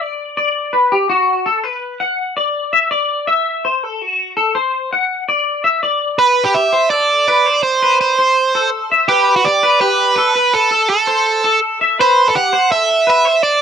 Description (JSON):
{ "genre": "rock", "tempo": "165 BPM", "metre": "4/4", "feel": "straight", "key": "unclear", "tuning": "A4 = 440 Hz", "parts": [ { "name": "twangy electric guitar", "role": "arpeggios", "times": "0.0-13.6 s", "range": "F#4 to F#5", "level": "-15 LUFS", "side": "left 2 dB", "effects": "ensemble chorus" }, { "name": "overdriven electric guitar", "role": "melody", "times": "6.2-13.6 s", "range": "F#4 to F#5", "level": "-13 LUFS", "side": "right 4 dB", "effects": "none" } ], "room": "moderate studio reverb, RT60 0.6 s", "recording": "none", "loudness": "-12 LUFS", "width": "side -8 dB against mid", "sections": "0.0-6.2 A section; 6.2-13.6 B section", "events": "none", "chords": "0.4 Bm; 3.1 F#m7b5; 4.7 Esus2; 6.2 Am11; 7.5 Amadd9; 8.9 Em7 (rootless); 10.5 C6; 12.0 Am9", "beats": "0.01 | 0.37 0.73 1.10 1.46 | 1.82 2.19 2.55 2.92 | 3.28 3.64 4.01 4.37 | 4.73 5.10 5.46 5.82 | 6.19 6.55 6.91 7.28 | 7.64 8.00 8.37 8.73 | 9.09 9.46 9.82 10.18 | 10.54 10.91 11.27 11.63 | 12.00 12.36 12.72 13.08 | 13.45" }